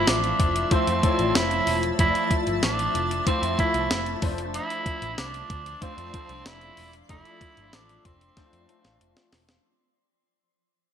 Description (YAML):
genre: 1980s-style pop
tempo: 94 BPM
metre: 4/4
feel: straight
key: unclear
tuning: A4 = 440 Hz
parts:
  - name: growling tenor saxophone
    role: melody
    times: 0.0-9.3 s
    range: C4 to E4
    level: -27 LUFS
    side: right 2 dB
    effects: ping-pong delay
  - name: clear concert grand piano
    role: accompaniment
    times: 0.0-9.7 s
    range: F3 to D5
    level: -29 LUFS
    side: left 3 dB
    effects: ensemble chorus
  - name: shimmering ambient pad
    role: sustained chords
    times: 0.0-9.6 s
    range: F3 to C6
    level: -34 LUFS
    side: equal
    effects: chorus, built-in reverb
  - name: vintage muted picked electric bass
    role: bass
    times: 0.0-9.6 s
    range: E1 to F2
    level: -32 LUFS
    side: equal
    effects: none
  - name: clean 12-bit digital drum machine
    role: drums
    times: 0.1-9.6 s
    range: hi-hat, kick drum, snare drum, tambourine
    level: -26 LUFS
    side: equal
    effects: none
room: moderate plate reverb, RT60 1.8 s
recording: bright 1980s-style digital production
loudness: -22 LUFS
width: side -9 dB against mid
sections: 0.0-9.6 A section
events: fade-out 0.0-9.6; drum fill 8.4-9.6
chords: 0.0 Fmaj7; 4.2 Dm7